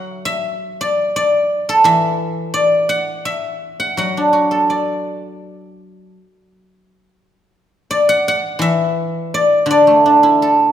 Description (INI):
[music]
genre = chinese traditional, Chinese solo plucked strings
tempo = 84 BPM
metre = 2/4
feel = uneven beats, rubato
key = D gong mode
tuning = A4 = 441 Hz
[part]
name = guzheng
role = solo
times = 0.0-10.7 s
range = D3 to F#5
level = -13 LUFS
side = equal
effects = none
[sound]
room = wet recital hall reverb, RT60 1.7 s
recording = recorded in a church or concert hall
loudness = -13 LUFS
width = side -10 dB against mid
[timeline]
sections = 0.0-10.7 A section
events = none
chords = none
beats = 0.43 | 1.16 1.86 | 2.56 3.28 | 3.99 4.70 | 5.43 6.16 | 6.88 7.57 | 8.27 8.96 | 9.69 10.44